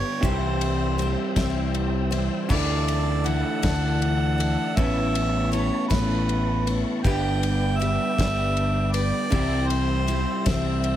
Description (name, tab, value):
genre	folk rock and heartland rock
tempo	53 BPM (dotted quarters)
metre	6/8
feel	straight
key	unclear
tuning	A4 = 440 Hz
part	mellow harmonica	melody	0.0-11.0 s	B4 to G5	-29 LUFS	right 2 dB	none
part	picked twelve-string acoustic guitar	accompaniment	0.0-11.0 s	C3 to C5	-31 LUFS	left 7 dB	none
part	tonewheel organ	sustained chords	0.0-11.0 s	B4 to E6	-37 LUFS	left 1 dB	slow rotary speaker, chorus vibrato
part	electric guitar through a small old amp	riff	0.0-11.0 s	G2 to G4	-27 LUFS	right 2 dB	none
part	fingered electric bass	bass	0.2-11.0 s	G1 to D2	-26 LUFS	equal	none
part	damped 70s drum kit	drums	0.2-11.0 s	crash cymbal, kick drum, ride cymbal, snare drum	-29 LUFS	left 1 dB	none
room	little or no reverb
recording	none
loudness	-21 LUFS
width	side -11 dB against mid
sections	0.0-11.0 A section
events	none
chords	0.2 C; 2.5 Dsus2; 4.8 Aadd9; 7.0 G; 9.3 C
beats	| 0.23 1.36 | 2.50 3.63 | 4.77 5.91 | 7.04 8.18 | 9.32 10.46